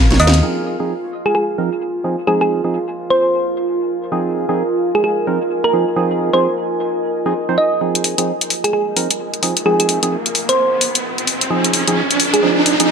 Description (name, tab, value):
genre	bass house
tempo	130 BPM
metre	4/4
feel	swing 60% on 16ths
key	F minor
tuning	A4 = 440 Hz
part	deep dark ambient pad	texture	0.0-12.9 s	F4 to Ab5	-22 LUFS	right 1 dB	chorus, built-in reverb
part	percussive organ stab	stabs	0.1-12.9 s	F3 to Db5	-21 LUFS	right 3 dB	chorus, dub echo
part	garage drum kit	drums	0.1-0.4, 8.0-12.9 s	hi-hat, snare drum	-17 LUFS	left 1 dB	none
part	thumb-piano-like synth pluck	melody	0.2-12.4 s	Ab4 to Eb5	-18 LUFS	right 1 dB	chorus, dub echo
part	riser	sound effects	9.8-12.9 s	none	-19 LUFS	right 1 dB	none
room	moderate plate reverb, RT60 1.5 s, digital ambience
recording	none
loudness	-14 LUFS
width	side -6 dB against mid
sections	0.4-7.8 A section; 7.8-12.9 B section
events	drum fill 0.0-0.4; band accent 0.3; filter sweep on synth stab 0.4-7.8; build-up 7.8-12.9; riser 9.8-12.9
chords	0.4 Fm7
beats	| 0.43 0.89 1.35 1.81 | 2.27 2.74 3.20 3.66 | 4.12 4.58 5.04 5.50 | 5.97 6.43 6.89 7.35 | 7.81 8.27 8.74 9.20 | 9.66 10.12 10.58 11.04 | 11.51 11.97 12.43 12.89